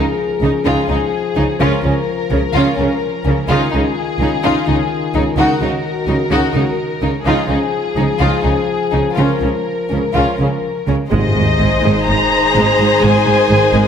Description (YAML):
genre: cinematic, epic orchestral film score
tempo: 127 BPM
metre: 4/4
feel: straight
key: unclear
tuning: A4 = 440 Hz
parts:
  - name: rich symphonic violin section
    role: melody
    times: 0.0-13.9 s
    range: Ab4 to Bb5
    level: -21 LUFS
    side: left 4 dB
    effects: none
  - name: rich chamber violin section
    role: second line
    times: 0.0-13.9 s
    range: Db4 to C5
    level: -20 LUFS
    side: left 3 dB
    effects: none
  - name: rich symphonic viola section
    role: accompaniment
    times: 0.0-13.9 s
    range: Ab3 to Eb4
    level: -22 LUFS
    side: right 1 dB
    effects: none
  - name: mellow French horn section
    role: sustained chords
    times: 0.0-13.9 s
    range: Eb3 to C5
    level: -21 LUFS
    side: left 4 dB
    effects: none
  - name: rich symphonic cello section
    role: bass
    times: 0.0-13.8 s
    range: Ab2 to Db3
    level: -20 LUFS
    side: right 2 dB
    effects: none
  - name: rich symphonic double bass section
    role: bass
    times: 0.0-13.8 s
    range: Ab1 to Db2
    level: -20 LUFS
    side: right 3 dB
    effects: none
  - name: timpani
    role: percussion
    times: 11.1-11.8 s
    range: Ab2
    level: -22 LUFS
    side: equal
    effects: none
  - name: sub drop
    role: sound effects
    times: 11.3-13.0 s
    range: none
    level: -25 LUFS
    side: left 1 dB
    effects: none
room: moderate scoring stage reverb, RT60 1.8 s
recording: none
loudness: -13 LUFS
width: side -8 dB against mid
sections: 0.0-11.1 A section; 11.1-13.9 B section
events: build-up 0.0-11.1; impact 11.1-13.0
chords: 0.0 Fm7/Db; 1.6 Bbm/Db; 3.5 Dbadd9; 5.4 Ebm/Db; 7.3 Fm7/Db; 9.2 Bbm/Db; 11.1 Ab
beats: 0.18 0.66 1.13 | 1.61 2.08 2.56 3.03 | 3.50 3.97 4.44 4.91 | 5.38 5.85 6.32 6.79 | 7.26 7.74 8.21 8.68 | 9.17 9.66 10.15 10.63 | 11.11 11.59 12.08 12.55 | 13.03 13.50